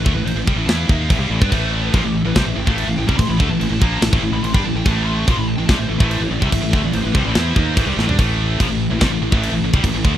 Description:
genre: heavy metal.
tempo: 144 BPM.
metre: 4/4.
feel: straight.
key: A minor.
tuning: A4 = 440 Hz.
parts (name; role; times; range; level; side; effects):
dark smooth lead guitar; melody; 0.0-7.9 s; G4 to C#6; -30 LUFS; left 1 dB; overdrive, tape echo.
heavy high-gain guitar; riff; 0.0-10.2 s; A2 to E4; -24 LUFS; left 9 dB; distortion.
heavy high-gain guitar; riff; 0.0-10.2 s; A2 to E4; -24 LUFS; right 11 dB; distortion.
fuzz fingered electric bass; bass; 0.0-10.1 s; A1 to G2; -21 LUFS; equal; overdrive.
tight metal drum kit; drums; 0.1-10.1 s; crash cymbal, kick drum, snare drum, toms; -19 LUFS; equal; none.
heavy high-gain guitar; riff; 1.5-10.1 s; A2 to E4; -24 LUFS; equal; distortion.
room: small room ambience.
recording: rough home demo mix.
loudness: -15 LUFS.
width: side -11 dB against mid.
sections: 0.0-8.2 A section; 8.2-10.2 B section.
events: drum fill 8.0.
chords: 0.0 Am.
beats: 0.26 0.68 1.10 | 1.52 1.94 2.35 2.77 | 3.19 3.60 4.02 4.44 | 4.86 5.27 5.69 6.11 | 6.52 6.94 7.35 7.77 | 8.18 8.59 9.01 9.42 | 9.84.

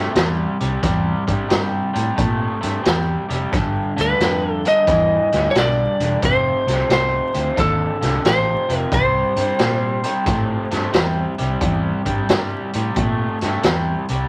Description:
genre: electric blues shuffle.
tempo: 89 BPM.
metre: 4/4.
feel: swing 66% on 8ths.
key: C mixolydian.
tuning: A4 = 440 Hz.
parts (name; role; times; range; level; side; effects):
lightly driven lead guitar; melody; 0.0-13.6 s; A4 to E5; -22 LUFS; equal; none.
crunchy overdriven guitar; riff; 0.0-14.3 s; F2 to A3; -26 LUFS; equal; spring reverb.
vintage muted fingered electric bass; bass; 0.0-14.2 s; E1 to Bb2; -26 LUFS; equal; none.
raw garage drum kit; drums; 0.2-14.2 s; hi-hat, kick drum, snare drum; -24 LUFS; equal; none.
room: moderate small room reverb, RT60 0.5 s.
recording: vinyl crackle.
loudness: -19 LUFS.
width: mono.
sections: 0.0-14.3 A section.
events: none.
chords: 0.0 C; 3.5 G7; 6.2 F; 8.9 C7.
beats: 0.15 | 0.83 1.50 2.18 2.85 | 3.53 4.20 4.88 5.55 | 6.22 6.90 7.57 8.25 | 8.92 9.59 10.27 10.94 | 11.62 12.29 12.96 13.64.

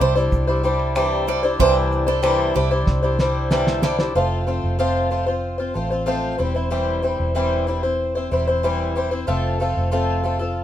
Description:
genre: acoustic pop.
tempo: 94 BPM.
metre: 4/4.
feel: straight.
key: F major.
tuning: A4 = 441 Hz.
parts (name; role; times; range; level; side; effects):
fingerpicked twelve-string acoustic guitar; accompaniment; 0.0-10.6 s; C3 to C5; -20 LUFS; left 1 dB; none.
picked steel-string acoustic guitar; arpeggios; 0.0-4.0 s; G4 to D5; -25 LUFS; right 11 dB; none.
vintage muted fingered electric bass; bass; 0.0-10.6 s; E1 to C2; -23 LUFS; equal; none.
cloth-damped thuddy drum kit; drums; 0.0-4.1 s; finger snaps, kick drum, shaker, snare drum; -22 LUFS; right 1 dB; none.
room: light reverb.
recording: minimal, uncompressed stereo recording.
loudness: -18 LUFS.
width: side -11 dB against mid.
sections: 0.0-4.2 A section; 4.2-10.6 B section.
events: drum fill 2.9-4.2.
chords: 0.0 Cadd9; 4.2 F; 6.4 C/E; 9.3 F.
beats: 0.32 0.96 | 1.60 2.24 2.87 3.51 | 4.15 4.79 5.43 6.07 | 6.71 7.36 8.00 8.64 | 9.28 9.92 10.56.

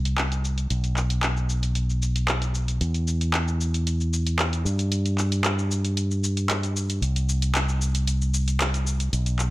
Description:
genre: nu-disco, nu disco.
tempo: 114 BPM.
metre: 4/4.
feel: straight.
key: unclear.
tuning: A4 = 440 Hz.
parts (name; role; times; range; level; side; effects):
fingered electric bass with an envelope filter; bass; 0.0-9.5 s; B1 to G2; -23 LUFS; equal; none.
pop drum kit; drums; 0.1-9.5 s; cabasa, handclaps, hi-hat; -28 LUFS; equal; low-pass filter on snare, small room ambience, low-pass filter on hats, low-pass filter on perc.
room: digital ambience.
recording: none.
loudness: -22 LUFS.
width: side -18 dB against mid.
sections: 0.0-9.5 A section.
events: none.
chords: none.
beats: 0.18 | 0.71 1.23 1.76 2.29 | 2.81 3.34 3.87 4.39 | 4.92 5.44 5.97 6.50 | 7.02 7.55 8.07 8.60 | 9.13.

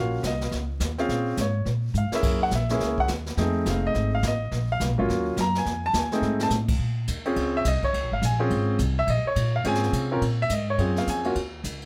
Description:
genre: jazz piano trio.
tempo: 210 BPM.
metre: 4/4.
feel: swing 62% on 8ths.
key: Bb minor.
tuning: A4 = 441 Hz.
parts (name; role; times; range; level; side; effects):
clear baby grand piano; melody; 0.0-11.3 s; Gb3 to Bb5; -28 LUFS; equal; none.
upright bass; bass; 0.0-11.9 s; F1 to C3; -29 LUFS; equal; none.
jazz brush drum kit; drums; 0.2-11.9 s; brushed snare drum, crash cymbal, hi-hat, kick drum, ride cymbal, snare drum; -34 LUFS; equal; none.
room: light reverb.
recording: none.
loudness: -25 LUFS.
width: mono.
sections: 0.0-6.8 A section; 6.8-11.9 A section.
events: grand piano solo 0.0-11.9; drum fill 1.9, 6.2.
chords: 0.0 Ebm9; 1.1 Bbm9; 2.2 Gb7; 3.4 F7#9; 4.5 Bb7sus2; 5.1 Ebm9; 5.7 F7#9; 6.8 Bbm9; 11.4 Eb7(no3).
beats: 0.24 0.52 0.81 | 1.09 1.38 1.66 1.95 | 2.23 2.52 2.80 3.09 | 3.37 3.66 3.94 4.23 | 4.51 4.80 5.08 5.37 | 5.65 5.94 6.22 6.51 | 6.79 7.08 7.37 7.65 | 7.94 8.22 8.51 8.79 | 9.07 9.36 9.64 9.93 | 10.21 10.50 10.78 11.07 | 11.35 11.64.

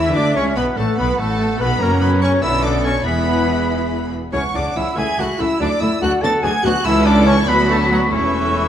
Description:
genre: quick classical-period movement for symphony orchestra.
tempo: 95 BPM (dotted quarters).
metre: 6/8.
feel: straight.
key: A major.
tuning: A4 = 440 Hz.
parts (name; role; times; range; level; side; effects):
rich chamber violin section; melody; 0.0-8.7 s; E5 to A6; -26 LUFS; left 2 dB; none.
mellow concert flute; second line; 0.0-8.7 s; C#5 to C#6; -24 LUFS; equal; none.
mellow cor anglais; second line; 0.0-8.7 s; E3 to A4; -24 LUFS; right 2 dB; none.
rich chamber violin section; second line; 0.0-8.7 s; C#4 to E5; -26 LUFS; left 3 dB; none.
warm clarinet; second line; 0.0-8.7 s; E4 to A5; -26 LUFS; left 1 dB; none.
rich symphonic viola section; accompaniment; 0.0-8.7 s; D3 to E4; -24 LUFS; right 1 dB; none.
mellow French horn section; sustained chords; 0.0-8.7 s; E3 to A4; -24 LUFS; left 3 dB; none.
rich chamber double bass section; bass; 0.0-8.7 s; E1 to E2; -22 LUFS; right 1 dB; none.
rich studio cello section; bass; 0.0-8.7 s; C#2 to E3; -23 LUFS; right 1 dB; none.
room: moderate scoring stage reverb, RT60 2.1 s.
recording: minimal, uncompressed stereo recording, vinyl crackle.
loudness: -15 LUFS.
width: side -10 dB against mid.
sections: 0.0-8.7 A section.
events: none.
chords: 0.0 A (rootless); 0.6 F#m; 1.8 F#; 2.4 Bm7; 3.1 E; 4.3 C#m; 5.0 A/C#; 5.6 D; 6.2 Bm; 6.9 A/C#; 7.5 Bm/D; 8.1 A/E.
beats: | 0.56 1.19 | 1.81 2.43 | 3.06 3.69 | 4.34 4.97 | 5.61 6.23 | 6.85 7.48 | 8.13.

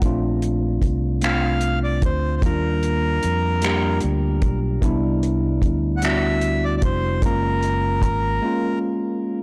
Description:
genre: slow six-eight R&B.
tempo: 50 BPM (dotted quarters).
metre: 6/8.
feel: straight.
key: Bb major.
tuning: A4 = 440 Hz.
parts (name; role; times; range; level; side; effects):
tine electric piano; accompaniment; 0.0-9.4 s; G3 to G4; -26 LUFS; equal; none.
fingered electric bass; bass; 0.0-8.4 s; F1 to F2; -25 LUFS; equal; none.
cloth-damped thuddy drum kit; drums; 0.0-8.2 s; finger snaps, hi-hat, kick drum; -25 LUFS; equal; none.
accordion; melody; 1.2-8.8 s; Bb4 to Gb5; -28 LUFS; equal; none.
room: small room reverb.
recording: blown-out, overdriven recording, overdrive.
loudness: -21 LUFS.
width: mono.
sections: 0.0-9.4 A section.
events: break 8.4-9.4.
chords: 0.0 Bbmaj9; 2.4 Ebmaj9; 4.8 Cmaj9; 7.2 Gbmaj9.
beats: | 0.02 1.22 | 2.42 3.62 | 4.82 6.02 | 7.22 8.42.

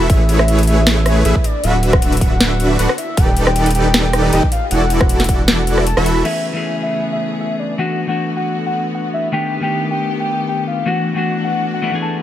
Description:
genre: future bass.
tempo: 156 BPM.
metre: 4/4.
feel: swing 54% on 16ths, half-time.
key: A major.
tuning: A4 = 440 Hz.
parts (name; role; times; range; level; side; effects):
soft octave-layered synth lead; melody; 0.0-12.2 s; D5 to B5; -22 LUFS; left 1 dB; chorus, sidechain pumping, ping-pong delay.
supersaw chords; riff; 0.0-6.2 s; D3 to F#5; -19 LUFS; equal; sidechain pumping, low-pass filter.
saturated sub bass; bass; 0.0-6.2 s; D1 to A1; -16 LUFS; equal; sidechain pumping.
electronic kick drum; drums; 0.1-5.4 s; none; -15 LUFS; equal; small room ambience.
trap drum kit; drums; 0.1-6.3 s; crash cymbal, hi-hat, rim click, snare drum; -19 LUFS; equal; overdrive, small room ambience.
clean electric guitar; accompaniment; 6.2-12.2 s; D#3 to G#4; -20 LUFS; left 3 dB; sidechain pumping.
bright symphonic string section; sustained chords; 6.2-12.2 s; C#3 to G#4; -27 LUFS; equal; sidechain pumping.
room: digital ambience.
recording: none.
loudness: -14 LUFS.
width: side -12 dB against mid.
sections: 0.0-6.3 A section; 6.3-12.2 B section.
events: drop 0.0-6.3; band accent 6.0.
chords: 0.1 Amaj9; 1.6 D6; 3.2 B7alt/D#; 4.7 E9sus4; 6.3 Amaj9; 7.8 D6; 9.3 B7alt/D#; 10.9 E9sus4.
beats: | 0.10 0.48 0.87 1.25 | 1.64 2.02 2.40 2.79 | 3.17 3.56 3.94 4.33 | 4.71 5.10 5.48 5.87 | 6.25 6.64 7.02 7.41 | 7.79 8.17 8.56 8.94 | 9.33 9.71 10.10 10.48 | 10.87 11.25 11.64 12.02.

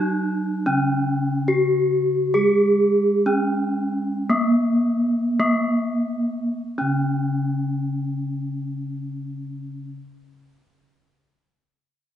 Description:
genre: gamelan.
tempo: 47-81 BPM.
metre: 4/4.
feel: straight.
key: C# pelog barang.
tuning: A4 = 441 Hz.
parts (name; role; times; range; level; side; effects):
gamelan-type bronze metallophone; melody; 0.0-9.9 s; A#3+20c to G#4-40c; -21 LUFS; equal; none.
gamelan-type bronze metallophone; accompaniment; 0.0-9.9 s; C#3 to A#3+20c; -25 LUFS; equal; none.
room: wet recital hall reverb, RT60 1.6 s.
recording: nothing above 11.0 kHz.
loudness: -19 LUFS.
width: side -10 dB against mid.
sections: 0.0-6.6 A section; 6.6-11.7 B section.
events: slowing down 0.0-6.6.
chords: none.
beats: 0.67 1.49 | 2.35 3.29 4.30 5.40 | 6.61 7.88 9.15.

